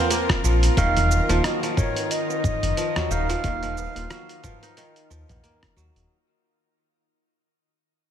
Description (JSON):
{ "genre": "organic downtempo", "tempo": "90 BPM", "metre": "4/4", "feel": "swing 57% on 16ths", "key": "unclear", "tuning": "A4 = 440 Hz", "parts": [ { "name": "dark clarinet", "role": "melody", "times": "0.0-5.4 s", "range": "Db5 to F5", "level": "-27 LUFS", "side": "right 1 dB", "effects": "ping-pong delay, shimmer reverb" }, { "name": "deep mellow chord stab", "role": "accompaniment", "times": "0.0-6.1 s", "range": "F3 to F4", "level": "-34 LUFS", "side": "right 2 dB", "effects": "analog chorus, cassette tape, sidechain pumping, ping-pong delay, shimmer reverb" }, { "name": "bowed-like drone", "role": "sustained chords", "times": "0.0-6.1 s", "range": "Eb3 to Bb4", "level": "-29 LUFS", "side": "right 2 dB", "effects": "built-in reverb, sidechain pumping, shimmer reverb" }, { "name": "kora", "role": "arpeggios", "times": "0.0-7.4 s", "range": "Eb3 to Bb4", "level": "-30 LUFS", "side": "equal", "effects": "ping-pong delay, shimmer reverb" }, { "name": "dusty soul sampler-style drum kit", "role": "drums", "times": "0.1-6.1 s", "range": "hi-hat, rim click, shaker, toms", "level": "-28 LUFS", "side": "right 1 dB", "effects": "overdrive, studio reverb" }, { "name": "electronic kick drum", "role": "drums", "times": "0.3-5.7 s", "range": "none", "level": "-24 LUFS", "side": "equal", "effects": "overdrive, studio reverb" }, { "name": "smooth gliding synth bass", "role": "bass", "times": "0.4-6.1 s", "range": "Eb1 to Eb2", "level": "-23 LUFS", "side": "equal", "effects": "sidechain pumping" }, { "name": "tabla", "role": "percussion", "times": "1.0-5.4 s", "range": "none", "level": "-30 LUFS", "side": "right 1 dB", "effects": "none" } ], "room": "light reverb", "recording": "none", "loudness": "-20 LUFS", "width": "side -9 dB against mid", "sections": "0.0-6.1 A section", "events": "fade-out 0.0-6.1", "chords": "0.0 Fsus4; 0.8 Ebmadd9" }